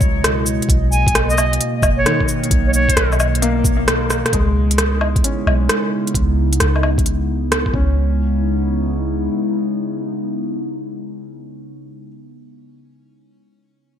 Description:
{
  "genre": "future garage",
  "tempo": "132 BPM",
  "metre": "4/4",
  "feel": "swing 66% on 16ths",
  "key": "C# dorian",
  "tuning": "A4 = 439 Hz",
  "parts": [
    { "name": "clear upright piano", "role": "accompaniment", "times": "0.0-14.0 s", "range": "D#3 to C#4", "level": "-26 LUFS", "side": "left 4 dB", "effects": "sidechain pumping, ping-pong delay" },
    { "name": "warbly tape-like pad", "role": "sustained chords", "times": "0.0-12.1 s", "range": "B2 to D#5", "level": "-22 LUFS", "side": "equal", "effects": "chorus, built-in reverb, sidechain pumping" },
    { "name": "soft 808-style bass", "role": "bass", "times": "0.0-9.3 s", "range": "F#1 to C#2", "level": "-19 LUFS", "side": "equal", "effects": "sidechain pumping" },
    { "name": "electronic kick drum", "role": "drums", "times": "0.0-7.9 s", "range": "none", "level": "-18 LUFS", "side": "equal", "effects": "overdrive" },
    { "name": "organic electronic drum kit", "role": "drums", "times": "0.0-7.6 s", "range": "cabasa, hi-hat, rim click, woodblock", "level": "-19 LUFS", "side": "equal", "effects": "gated reverb" },
    { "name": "bright reedy silver concert flute", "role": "melody", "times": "0.9-3.1 s", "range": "C#5 to G#5", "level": "-22 LUFS", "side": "equal", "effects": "ping-pong delay" }
  ],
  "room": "light reverb",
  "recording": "bright 1980s-style digital production",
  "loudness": "-15 LUFS",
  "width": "side -9 dB against mid",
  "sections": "0.0-4.3 A section; 4.3-8.0 B section; 8.0-11.6 C section",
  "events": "drum fill 4.1",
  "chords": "0.0 C#m7; 0.7 Bmaj7; 4.3 C#m7",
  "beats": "0.24 | 0.70 1.15 1.61 2.06 | 2.52 2.97 3.42 3.88 | 4.33 4.79 5.24 5.70 | 6.15 6.61 7.06 7.51 | 7.97 8.42 8.88 9.33 | 9.79 10.24 10.70 11.15"
}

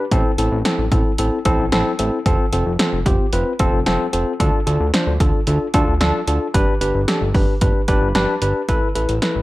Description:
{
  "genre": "synth-pop",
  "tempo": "112 BPM",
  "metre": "4/4",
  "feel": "straight",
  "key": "A minor",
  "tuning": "A4 = 438 Hz",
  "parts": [
    { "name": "tine electric piano", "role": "accompaniment", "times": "0.0-9.4 s", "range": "C4 to B5", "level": "-20 LUFS", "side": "left 1 dB", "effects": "medium stereo tremolo" },
    { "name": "fat analog bass", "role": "bass", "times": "0.1-9.4 s", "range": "F1 to D2", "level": "-21 LUFS", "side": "equal", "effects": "none" },
    { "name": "punchy analog drum machine", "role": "drums", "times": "0.1-9.3 s", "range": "hi-hat, kick drum, snare drum", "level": "-19 LUFS", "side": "equal", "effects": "none" }
  ],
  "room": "light reverb, digital ambience",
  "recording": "none",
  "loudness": "-16 LUFS",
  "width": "side -18 dB against mid",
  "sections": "0.0-8.7 A section",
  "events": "tine electric piano fill 7.6-8.7",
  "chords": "0.1 Am; 2.3 F; 4.4 Dm; 6.5 G; 8.7 Asus2",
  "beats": "| 0.12 0.65 1.19 1.72 | 2.26 2.79 3.33 3.87 | 4.40 4.94 5.47 6.01 | 6.54 7.08 7.62 8.15 | 8.69 9.22"
}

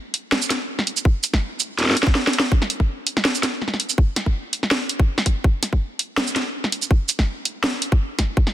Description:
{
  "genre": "drum and bass",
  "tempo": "164 BPM",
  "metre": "4/4",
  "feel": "swing 55% on 16ths, half-time",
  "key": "none",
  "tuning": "none",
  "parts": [
    { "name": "drum and bass drum kit", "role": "drums", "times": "0.1-8.5 s", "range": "hi-hat, shaker, snare drum", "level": "-21 LUFS", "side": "equal", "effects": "soft clipping on snare" },
    { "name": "electronic kick drum", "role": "drums", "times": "1.1-8.4 s", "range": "none", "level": "-18 LUFS", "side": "equal", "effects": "none" }
  ],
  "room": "light reverb",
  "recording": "dense, heavily limited modern master",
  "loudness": "-19 LUFS",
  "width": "side -13 dB against mid",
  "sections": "0.0-8.5 A section",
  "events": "drum fill 1.8-2.5; kick drops out 2.1-2.5",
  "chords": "none",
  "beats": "0.32 0.69 | 1.05 1.42 1.78 2.15 | 2.52 2.88 3.25 3.61 | 3.98 4.34 4.71 5.08 | 5.44 5.81 6.17 6.54 | 6.91 7.27 7.64 8.00 | 8.37"
}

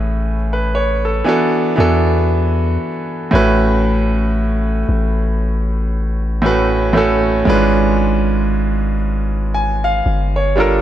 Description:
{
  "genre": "contemporary R&B",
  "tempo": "58 BPM",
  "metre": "4/4",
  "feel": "swing 58% on 16ths",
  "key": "A major",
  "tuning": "A4 = 441 Hz",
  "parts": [
    { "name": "bright concert grand piano", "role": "accompaniment", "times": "0.0-10.8 s", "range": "G#2 to G#5", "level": "-16 LUFS", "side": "right 2 dB", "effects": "none" },
    { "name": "long sustained 808-style bass", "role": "bass", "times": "0.0-10.8 s", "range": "G1 to E2", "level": "-17 LUFS", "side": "left 1 dB", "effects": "none" }
  ],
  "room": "light reverb, studio ambience",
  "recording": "none",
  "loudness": "-14 LUFS",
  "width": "side -11 dB against mid",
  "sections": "0.0-3.3 A section; 3.3-10.8 B section",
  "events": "none",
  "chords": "0.0 Amaj9; 1.3 E7sus4; 3.3 A69; 7.5 C#7b9/G#",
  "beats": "0.23 1.27 2.30 | 3.34 4.37 5.41 6.44 | 7.47 8.51 9.54 10.58"
}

